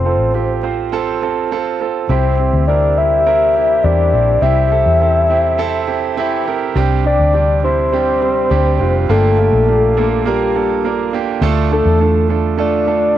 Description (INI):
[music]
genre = piano-driven pop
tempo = 103 BPM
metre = 4/4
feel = straight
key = unclear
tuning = A4 = 440 Hz
[part]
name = soft octave-layered synth lead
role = melody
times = 0.0-13.2 s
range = G4 to E5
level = -15 LUFS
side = left 2 dB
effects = chorus, plate reverb
[part]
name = warm concert grand piano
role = accompaniment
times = 0.0-13.2 s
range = G2 to C5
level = -18 LUFS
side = right 8 dB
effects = cassette tape, plate reverb
[part]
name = vintage muted fingered electric bass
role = bass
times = 0.0-13.1 s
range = F1 to E2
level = -17 LUFS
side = left 1 dB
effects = none
[part]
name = mellow French horn section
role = second line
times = 2.1-6.5 s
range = E3 to G4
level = -25 LUFS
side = left 11 dB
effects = cassette tape, plate reverb
[sound]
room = moderate booth ambience, RT60 0.2 s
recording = home recording on cassette, nothing above 10.3 kHz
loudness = -12 LUFS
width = side -12 dB against mid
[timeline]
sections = 0.0-6.8 A section; 6.8-13.2 B section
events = none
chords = 0.0 F; 2.1 C; 6.8 Csus2; 9.1 Gm7; 11.4 Dm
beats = 0.35 0.93 1.51 | 2.10 2.68 3.26 3.85 | 4.43 5.01 5.60 6.18 | 6.76 7.34 7.93 8.51 | 9.09 9.68 10.26 10.84 | 11.42 12.01 12.59 13.17